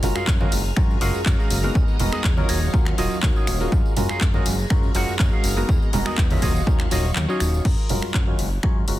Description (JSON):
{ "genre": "filtered disco house", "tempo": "122 BPM", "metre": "4/4", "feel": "straight", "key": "F# major", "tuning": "A4 = 440 Hz", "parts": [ { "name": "clav", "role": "accompaniment", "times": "0.0-9.0 s", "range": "F#3 to E#5", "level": "-28 LUFS", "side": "left 1 dB", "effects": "phaser, sidechain pumping, low-pass filter" }, { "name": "string machine, full ensemble", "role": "sustained chords", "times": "0.0-7.6 s", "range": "F#3 to E#6", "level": "-33 LUFS", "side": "equal", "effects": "phaser, ensemble chorus, sidechain pumping, low-pass filter" }, { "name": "fat analog bass", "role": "bass", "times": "0.0-9.0 s", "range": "D#1 to F#2", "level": "-25 LUFS", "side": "equal", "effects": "tube saturation, sidechain pumping, low-pass filter" }, { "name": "house drum kit", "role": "drums", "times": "0.0-9.0 s", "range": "crash cymbal, finger snaps, handclaps, hi-hat", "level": "-29 LUFS", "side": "left 1 dB", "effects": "sidechain pumping on hats, studio reverb, sidechain pumping on cymbals" }, { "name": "congas and tambourine", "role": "percussion", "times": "0.0-9.0 s", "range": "none", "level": "-31 LUFS", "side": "right 3 dB", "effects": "sidechain pumping on perc, low-pass filter on perc" }, { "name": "electric guitar with an envelope filter", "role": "riff", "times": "0.2-8.9 s", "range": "E#4 to F#5", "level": "-30 LUFS", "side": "right 2 dB", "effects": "vintage 12-bit sampler grit, sidechain pumping, low-pass filter" }, { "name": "electronic kick drum", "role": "drums", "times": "0.3-8.7 s", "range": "none", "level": "-21 LUFS", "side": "equal", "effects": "studio reverb" } ], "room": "little or no reverb", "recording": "dense, heavily limited modern master", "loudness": "-18 LUFS", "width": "side -15 dB against mid", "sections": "0.0-7.7 A section; 7.7-9.0 B section", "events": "drop 0.0-7.7; kick drops out 7.2-7.7", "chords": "0.0 F#maj9; 1.8 Emaj9#11; 2.5 D#m9; 3.7 F#maj9; 5.7 Emaj9#11; 6.4 D#m9; 7.7 F#maj9" }